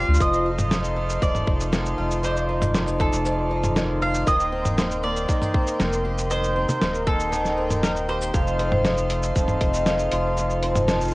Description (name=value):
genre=folktronica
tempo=118 BPM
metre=4/4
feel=straight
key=F mixolydian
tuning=A4 = 435 Hz
part: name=bowl-back mandolin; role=melody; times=0.0-8.8 s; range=A4 to F5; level=-27 LUFS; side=right 1 dB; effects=cassette tape, tape echo
part: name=hand-pumped harmonium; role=sustained chords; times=0.0-11.1 s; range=Bb3 to G5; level=-30 LUFS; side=equal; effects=cassette tape
part: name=picked twelve-string acoustic guitar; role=arpeggios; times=0.0-11.1 s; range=F2 to G4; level=-27 LUFS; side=equal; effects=cassette tape
part: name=round analog bass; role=bass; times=0.0-11.1 s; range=Eb1 to D2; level=-26 LUFS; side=equal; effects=none
part: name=lo-fi sampler-style drum kit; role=drums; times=0.0-11.1 s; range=hi-hat, shaker, snare drum, toms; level=-25 LUFS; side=equal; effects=cassette tape
part: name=flickering grainy texture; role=texture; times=0.1-11.1 s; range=C6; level=-40 LUFS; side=right 1 dB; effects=none
part: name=electronic kick drum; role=drums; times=0.2-9.7 s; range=none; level=-22 LUFS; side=equal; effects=cassette tape
part: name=vibraphone with hard mallets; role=second line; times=8.3-11.1 s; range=C5 to A5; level=-27 LUFS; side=equal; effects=cassette tape, analog delay
room=light reverb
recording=home recording on cassette, vinyl crackle, nothing above 10.5 kHz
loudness=-20 LUFS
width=side -21 dB against mid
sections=0.2-11.1 A section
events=none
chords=0.2 F7; 4.3 Eb6; 8.3 F7